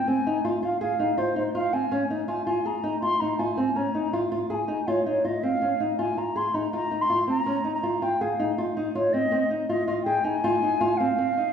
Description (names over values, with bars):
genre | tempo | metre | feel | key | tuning
contemporary instrumental, contemporary | 162 BPM | 5/4 | straight | F minor | A4 = 441 Hz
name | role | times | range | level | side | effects
mellow wooden flute | melody | 0.0-11.5 s | C5 to C6 | -26 LUFS | equal | none
nylon-string guitar | arpeggios | 0.1-11.5 s | C4 to Ab4 | -26 LUFS | equal | none
room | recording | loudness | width
wet recital hall reverb, RT60 1.5 s | recorded in a church or concert hall | -23 LUFS | side -7 dB against mid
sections
0.0-11.5 A section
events
none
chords
0.0 Fm; 1.9 N.C.; 9.3 Ab